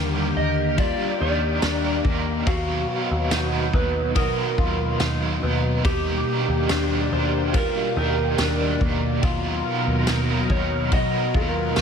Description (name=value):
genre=dream pop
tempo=71 BPM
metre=4/4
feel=straight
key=unclear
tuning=A4 = 440 Hz
part: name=electric slide guitar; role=melody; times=0.0-11.8 s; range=F#4 to Eb5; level=-27 LUFS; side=right 2 dB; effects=ping-pong delay
part: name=crunchy overdriven guitar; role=accompaniment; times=0.0-11.8 s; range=Eb3 to Bb4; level=-28 LUFS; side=right 5 dB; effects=tremolo, lush chorus
part: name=phased analog pad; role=sustained chords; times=0.0-11.8 s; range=B2 to A#4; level=-27 LUFS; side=equal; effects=phaser, chorus
part: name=mellow electric guitar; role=arpeggios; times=0.0-11.8 s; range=D3 to F5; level=-28 LUFS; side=left 6 dB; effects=analog chorus, ping-pong delay
part: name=vintage muted picked electric bass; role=bass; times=0.0-11.8 s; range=Eb2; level=-26 LUFS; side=equal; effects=none
part: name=kora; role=texture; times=0.0-8.9 s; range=C5 to F5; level=-37 LUFS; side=left 5 dB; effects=none
part: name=vintage drum kit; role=drums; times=0.8-11.8 s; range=kick drum, ride cymbal, snare drum, tambourine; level=-27 LUFS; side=equal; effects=none
room=light reverb, small room ambience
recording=none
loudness=-20 LUFS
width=side -6 dB against mid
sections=0.0-11.8 A section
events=none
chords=0.0 Ebmaj7; 2.5 Bmaj7/D#; 5.8 Ebmaj7; 9.2 Bmaj7/D#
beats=0.78 1.62 | 2.47 3.31 4.16 5.00 | 5.85 6.70 7.54 8.38 | 9.23 10.07 10.92 11.77